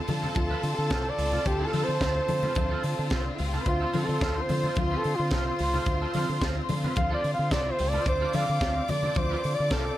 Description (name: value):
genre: disco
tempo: 109 BPM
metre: 4/4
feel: straight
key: D minor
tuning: A4 = 437 Hz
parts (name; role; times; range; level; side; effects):
- warm symphonic violin section; second line; 0.0-10.0 s; C4 to D6; -34 LUFS; left 1 dB; none
- rich studio string section; sustained chords; 0.0-10.0 s; D3 to F4; -35 LUFS; left 2 dB; none
- electric guitar at the edge of break-up; accompaniment; 0.1-9.9 s; C4 to B4; -37 LUFS; right 4 dB; ensemble chorus
- fingered electric bass with an envelope filter; bass; 0.1-9.9 s; C2 to D3; -30 LUFS; equal; none
- tight funk drum kit; drums; 0.1-9.8 s; hi-hat, kick drum, snare drum; -32 LUFS; equal; none
- congas; percussion; 0.1-9.9 s; none; -36 LUFS; left 5 dB; none
- mellow flugelhorn; melody; 0.4-10.0 s; F4 to F5; -30 LUFS; right 1 dB; none
room: light reverb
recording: none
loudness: -24 LUFS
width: side -14 dB against mid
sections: 0.0-10.0 A section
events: flugelhorn solo 0.0-10.0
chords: 0.0 Dm7